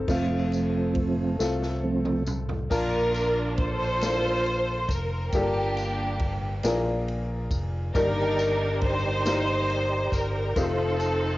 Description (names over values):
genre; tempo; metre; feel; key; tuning
slow gospel; 46 BPM (dotted quarters); 6/8; straight; Bb major; A4 = 440 Hz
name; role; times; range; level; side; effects
clear upright piano; accompaniment; 0.0-11.4 s; G2 to A5; -30 LUFS; left 2 dB; none
fingered electric bass; bass; 0.0-11.4 s; F1 to C2; -30 LUFS; equal; none
mellow tonewheel organ; sustained chords; 0.1-2.2, 7.9-11.4 s; F3 to C6; -28 LUFS; right 2 dB; slow rotary speaker, chorus vibrato
warm French horn section; sustained chords; 0.1-2.7 s; A3 to A4; -40 LUFS; right 1 dB; none
swinging big-band drum kit; drums; 0.1-11.2 s; crash cymbal, kick drum, ride cymbal, snare drum, toms; -33 LUFS; equal; cassette tape
tambourine; percussion; 0.1-11.4 s; none; -40 LUFS; left 3 dB; none
clear studio string section; melody; 2.7-11.4 s; Bb3 to C5; -27 LUFS; right 1 dB; cassette tape, tape echo
room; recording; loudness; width
light reverb; home recording on cassette, nothing above 7.6 kHz; -23 LUFS; side -17 dB against mid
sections
0.1-2.7 A section; 2.7-11.4 B section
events
tonewheel organ solo 0.1-2.7; drum fill 1.4-2.7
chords
0.1 F; 2.7 Bbmaj7; 5.3 Gm7; 6.6 Bb7; 7.9 Ebmaj7/G; 10.6 F7